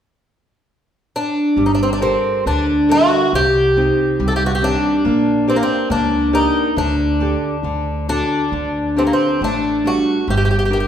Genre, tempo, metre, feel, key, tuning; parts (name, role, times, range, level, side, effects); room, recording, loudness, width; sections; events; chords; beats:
fado-style ballad; 69 BPM; 2/4; rubato; G harmonic minor; A4 = 440 Hz
fingerpicked twelve-string acoustic guitar; melody; 1.2-10.9 s; Bb3 to A4; -16 LUFS; equal
nylon-string guitar; accompaniment; 1.6-10.9 s; C3 to D5; -21 LUFS; equal
upright bass; bass; 1.6-10.8 s; G1 to D2; -23 LUFS; equal
wet large studio reverb, RT60 1.3 s; band playing live in one room; -14 LUFS; side -9 dB against mid
0.0-1.6 A section; 1.6-10.9 B section
0.0 N.C.; 1.6 Gmadd9; 3.3 Cm; 5.0 Gm/Bb; 6.8 Dsus4; 7.6 D; 8.5 Dsus4; 10.3 Gm
0.70 | 1.57 2.46 | 3.33 4.19 | 5.04 5.90 | 6.77 7.64 | 8.52 9.41 | 10.28